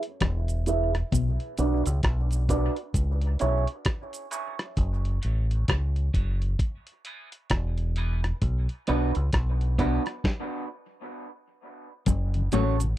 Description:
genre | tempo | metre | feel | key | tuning
dub reggae | 66 BPM | 4/4 | swing 60% on 16ths | F# minor | A4 = 440 Hz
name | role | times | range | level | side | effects
dusty soul sampler-style drum kit | drums | 0.0-13.0 s | hi-hat, kick drum, rim click, snare drum | -27 LUFS | equal | none
mellow electric guitar | riff | 0.2-1.3, 12.1-12.8 s | E2 to B2 | -31 LUFS | left 6 dB | spring reverb, low-pass filter, dub echo
deep dub fingered electric bass | bass | 0.2-12.9 s | E1 to C#2 | -25 LUFS | equal | none
cabasa | percussion | 0.5-4.6, 12.1-13.0 s | none | -39 LUFS | right 6 dB | high-pass filter on perc
electric guitar at the edge of break-up | accompaniment | 0.7-12.8 s | B3 to E5 | -30 LUFS | right 3 dB | high-pass filter, low-pass filter, dub echo
mellow tonewheel organ | accompaniment | 12.4-12.9 s | F#2 to C#4 | -30 LUFS | left 4 dB | chorus vibrato
room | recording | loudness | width
little or no reverb | dry, close 1970s-style studio recording | -24 LUFS | side -14 dB against mid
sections
0.0-12.1 A section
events
filter sweep 0.0-12.1; part muted 4.8-12.1; stop 10.2-12.1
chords
0.0 E; 1.1 Bm; 2.9 C#m; 4.8 F#m; 6.6 E; 8.4 Bm; 10.2 N.C.; 12.1 F#m

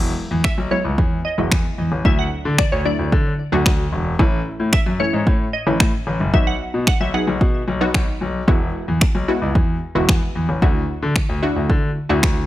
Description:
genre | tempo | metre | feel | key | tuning
dance-pop | 112 BPM | 4/4 | straight | E major | A4 = 440 Hz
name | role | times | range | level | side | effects
punchy chord stab | accompaniment | 0.0-12.5 s | E3 to G#4 | -24 LUFS | equal | chorus, sidechain pumping
clear concert grand piano | bass | 0.0-12.4 s | E1 to D3 | -21 LUFS | left 1 dB | sidechain pumping
glassy wavetable pluck | melody | 0.4-8.2 s | C#5 to F#5 | -26 LUFS | left 1 dB | chorus, tape echo
punchy analog drum machine | drums | 0.4-12.4 s | finger snaps, kick drum | -17 LUFS | equal | none
room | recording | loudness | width
digital ambience | dark, warm production | -16 LUFS | side -14 dB against mid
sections
0.0-12.5 A section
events
none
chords
0.0 Eadd9; 2.1 Dadd9; 4.2 A; 6.3 B; 8.5 Eadd9; 10.6 Dadd9

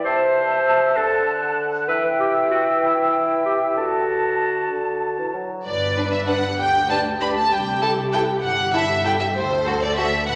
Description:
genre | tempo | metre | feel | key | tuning
cinematic | 65 BPM (dotted quarters) | 6/8 | straight | G major | A4 = 440 Hz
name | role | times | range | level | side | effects
small flute group | second line | 0.0-5.3 s | G5 to A5 | -29 LUFS | equal | none
mellow bassoon | accompaniment | 0.0-5.7 s | C3 to F#3 | -29 LUFS | equal | none
bright clarinet | second line | 0.1-5.3 s | E4 to C5 | -25 LUFS | equal | none
warm oboe | second line | 0.1-5.3 s | E5 to A5 | -25 LUFS | equal | none
warm studio violin section | melody | 5.7-10.3 s | C5 to B5 | -23 LUFS | equal | none
warm studio viola section | accompaniment | 5.7-10.4 s | G4 to B4 | -30 LUFS | equal | none
rich studio double bass section | bass | 5.7-10.4 s | G1 to D2 | -36 LUFS | equal | none
warm studio cello section | bass | 5.7-10.4 s | C2 to A2 | -33 LUFS | equal | none
rich studio violin section | second line | 6.0-10.1 s | D4 to B4 | -28 LUFS | equal | none
room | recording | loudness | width
wet concert hall reverb, RT60 2.1 s | none | -21 LUFS | mono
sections
0.0-5.7 A section; 5.7-10.4 A section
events
none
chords
0.0 Am/C; 1.0 D; 1.9 Em; 3.8 D; 5.7 G; 7.5 C6; 9.3 D

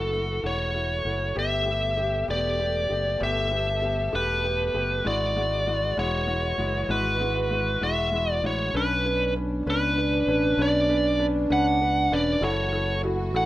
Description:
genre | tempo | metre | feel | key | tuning
six-eight pop ballad | 65 BPM (dotted quarters) | 6/8 | straight | B minor | A4 = 440 Hz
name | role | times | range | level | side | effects
biting lead guitar | melody | 0.0-13.5 s | A4 to F#5 | -25 LUFS | right 1 dB | overdrive
felt-muted upright piano | accompaniment | 0.0-13.5 s | G#3 to B4 | -30 LUFS | left 2 dB | none
warm studio string section | sustained chords | 0.0-13.5 s | B2 to A4 | -38 LUFS | left 1 dB | none
fingered electric bass | bass | 0.0-13.5 s | E1 to C#2 | -29 LUFS | equal | none
mellow French horn section | second line | 8.8-13.5 s | D4 to F#4 | -27 LUFS | right 1 dB | none
room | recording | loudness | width
moderate small room reverb, RT60 0.5 s | rough home demo mix | -22 LUFS | side -15 dB against mid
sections
0.0-8.7 A section; 8.7-13.5 B section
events
none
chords
0.0 F#m7; 1.4 Gadd9; 5.1 Eadd9; 8.7 Bmadd9; 12.4 F#m7

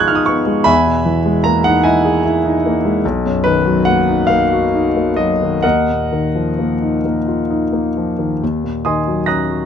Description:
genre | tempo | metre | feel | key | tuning
classical, impressionist solo piano | 42-52 BPM (dotted quarters) | 6/8 | rubato | unclear | A4 = 440 Hz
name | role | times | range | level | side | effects
warm concert grand piano | solo | 0.0-9.7 s | B1 to Bb6 | -13 LUFS | equal | none
room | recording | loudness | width
little or no reverb | close, detailed microphones | -13 LUFS | side -8 dB against mid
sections
0.0-8.4 A section; 8.4-9.7 B section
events
none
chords
0.0 Abm6; 0.7 Emaj7#11; 3.0 Bmaj7; 5.6 Ebmadd9; 8.4 Ebm7

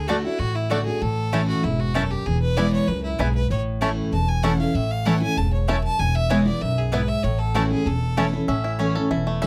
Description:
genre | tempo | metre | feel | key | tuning
bluegrass | 193 BPM | 4/4 | straight | A major | A4 = 440 Hz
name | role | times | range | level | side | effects
clear fiddle | melody | 0.0-8.4 s | E4 to A5 | -30 LUFS | equal | none
picked steel-string acoustic guitar | accompaniment | 0.0-9.5 s | E2 to F#4 | -27 LUFS | equal | none
upright bass | bass | 0.0-9.5 s | E1 to D2 | -27 LUFS | equal | none
bluegrass banjo | arpeggios | 0.1-9.5 s | A3 to A4 | -29 LUFS | equal | none
mandolin | stabs | 0.1-9.5 s | A3 to A5 | -31 LUFS | equal | none
room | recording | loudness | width
moderate small room reverb, RT60 0.5 s | close, detailed microphones | -22 LUFS | mono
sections
0.0-8.5 A section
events
none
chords
0.0 D; 1.0 A; 2.3 E; 3.5 A; 6.0 E; 7.2 A

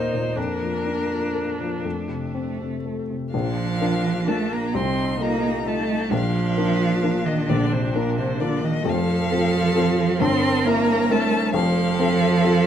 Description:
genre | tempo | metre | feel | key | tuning
classical, slow romantic movement for piano quartet | 40-46 BPM (dotted quarters) | 6/8 | rubato | Bb major | A4 = 441 Hz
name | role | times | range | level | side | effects
rich violin | melody | 0.0-12.7 s | Bb4 to C6 | -28 LUFS | left 5 dB | none
rich cello | second line | 0.0-12.7 s | Bb2 to C4 | -23 LUFS | right 4 dB | none
rich viola | accompaniment | 0.0-12.7 s | D4 to Bb4 | -30 LUFS | right 2 dB | none
warm baby grand piano | accompaniment | 0.0-12.7 s | F1 to Bb4 | -24 LUFS | left 3 dB | none
room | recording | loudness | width
light reverb | close, detailed microphones | -20 LUFS | side -9 dB against mid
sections
0.0-3.3 A section; 3.3-12.7 B section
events
none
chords
0.4 Bb/F; 1.8 F; 3.3 Bb; 4.7 F7/C; 6.1 Bb; 8.9 F; 10.2 C7/G; 11.5 F

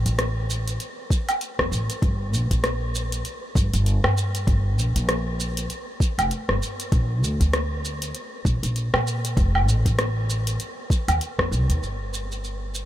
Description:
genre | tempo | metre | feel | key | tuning
organic downtempo | 98 BPM | 4/4 | swing 59% on 16ths | G minor | A4 = 440 Hz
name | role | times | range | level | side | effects
upright bass | bass | 0.0-12.9 s | F1 to Bb2 | -23 LUFS | equal | none
deep house drum kit | drums | 0.1-12.9 s | hi-hat, rim click, shaker, woodblock | -27 LUFS | equal | none
electronic kick drum | drums | 1.1-11.5 s | none | -22 LUFS | equal | overdrive
room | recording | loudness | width
light reverb | none | -21 LUFS | side -13 dB against mid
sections
0.0-11.8 A section; 11.8-12.9 B section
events
none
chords
none

